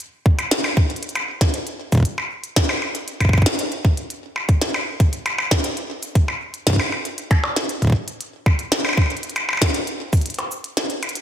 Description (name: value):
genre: IDM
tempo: 117 BPM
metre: 4/4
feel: straight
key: none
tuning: none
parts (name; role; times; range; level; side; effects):
- glitchy drum kit; drums; 0.0-11.2 s; cabasa, hi-hat, percussion blips, snare drum; -22 LUFS; equal; none
- electronic kick drum; drums; 0.3-10.2 s; none; -17 LUFS; equal; none
room: moderate lush hall reverb, RT60 2.0 s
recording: bright 1980s-style digital production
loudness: -18 LUFS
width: side -10 dB against mid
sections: 0.0-11.2 A section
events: break 10.3-11.2; drum fill 11.0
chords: none